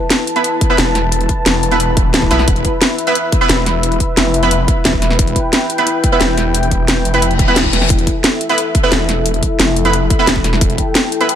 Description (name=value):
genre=dark technical drum and bass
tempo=177 BPM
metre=4/4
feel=straight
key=E phrygian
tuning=A4 = 440 Hz
part: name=dark analog pad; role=sustained chords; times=0.0-11.4 s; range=E4 to A5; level=-19 LUFS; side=left 2 dB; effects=chorus, vintage 12-bit sampler grit, sidechain pumping
part: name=drum and bass drum kit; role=drums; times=0.1-11.4 s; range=hi-hat, snare drum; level=-16 LUFS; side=equal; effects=none
part: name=orchestra-hit-like synth stab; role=stabs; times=0.4-11.3 s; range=B3 to B4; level=-18 LUFS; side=right 3 dB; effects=built-in reverb, dub echo
part: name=electronic kick drum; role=drums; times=0.6-10.8 s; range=none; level=-16 LUFS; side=equal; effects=none
part: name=snarling distorted saw bass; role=bass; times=0.8-10.8 s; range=E1 to B1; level=-17 LUFS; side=equal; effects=distortion, overdrive
part: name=reverse cymbal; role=sound effects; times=7.3-7.9 s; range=none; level=-22 LUFS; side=left 5 dB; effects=none
room=light reverb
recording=none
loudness=-11 LUFS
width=side -9 dB against mid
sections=0.0-11.4 A section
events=reverse cymbal 7.3-7.9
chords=0.0 E5